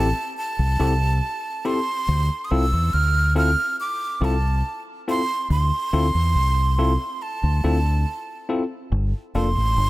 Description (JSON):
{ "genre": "lovers rock reggae", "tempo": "70 BPM", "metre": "4/4", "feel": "straight", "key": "D minor", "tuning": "A4 = 440 Hz", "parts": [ { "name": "breathy jazz flute", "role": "melody", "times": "0.0-9.9 s", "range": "A5 to F6", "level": "-24 LUFS", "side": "right 2 dB", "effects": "tape echo" }, { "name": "bright tine electric piano", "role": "accompaniment", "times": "0.0-9.5 s", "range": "Bb3 to A4", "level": "-28 LUFS", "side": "left 3 dB", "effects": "tube saturation" }, { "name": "deep dub fingered electric bass", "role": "bass", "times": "0.0-9.9 s", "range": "F1 to E2", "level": "-20 LUFS", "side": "equal", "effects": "none" } ], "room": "light reverb, small room ambience", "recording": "none", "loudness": "-20 LUFS", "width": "side -18 dB against mid", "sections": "0.0-9.9 A section", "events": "none", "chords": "0.0 Am7; 2.1 Dm9; 8.9 Gm9", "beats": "0.37 1.22 | 2.08 2.94 3.79 4.65 | 5.50 6.36 7.21 8.07 | 8.92 9.78" }